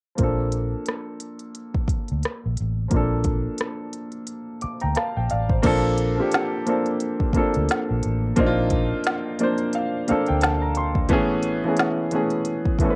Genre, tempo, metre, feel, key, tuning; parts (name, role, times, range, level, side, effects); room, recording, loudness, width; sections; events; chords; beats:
R&B, neo-soul; 88 BPM; 4/4; swing 57% on 16ths; Bb major; A4 = 440 Hz
warm baby grand piano; accompaniment; 0.2-13.0 s; E3 to D6; -26 LUFS; equal
vintage muted fingered electric bass; bass; 0.2-12.8 s; A1 to D2; -28 LUFS; equal
organic electronic drum kit; drums; 0.2-13.0 s; crash cymbal, hi-hat, kick drum, rim click, snare drum; -27 LUFS; equal; cassette tape
light reverb; home recording on cassette; -23 LUFS; mono
0.2-5.6 A section; 5.6-13.0 B section
grand piano fill 4.3-5.6, 9.1-11.1
0.2 Bbmaj9; 11.1 Amaj9
| 0.19 0.87 1.55 2.23 | 2.92 3.60 4.28 4.96 | 5.64 6.32 7.01 7.69 | 8.37 9.05 9.73 10.41 | 11.10 11.78 12.46